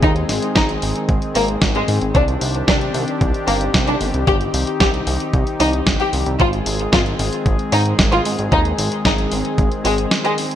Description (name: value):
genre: italo disco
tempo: 113 BPM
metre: 4/4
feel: straight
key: unclear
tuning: A4 = 441 Hz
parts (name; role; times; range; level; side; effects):
- warm chamber violin section; melody; 0.0-10.3 s; Ab3 to G4; -21 LUFS; left 1 dB; digital delay
- warm analog pad; sustained chords; 0.0-10.6 s; Eb3 to Ab4; -23 LUFS; left 2 dB; chorus
- chorused synth bass; bass; 0.0-10.1 s; G1 to Ab2; -22 LUFS; equal; none
- clean 12-bit digital drum machine; drums; 0.0-10.6 s; hi-hat, snare drum; -21 LUFS; equal; gated reverb
- electronic kick drum; drums; 0.0-9.7 s; none; -19 LUFS; equal; none
room: light reverb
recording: bright 1980s-style digital production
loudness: -15 LUFS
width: side -10 dB against mid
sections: 0.0-10.6 A section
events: none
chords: 0.0 Ab; 2.1 Cmadd9; 6.4 Ab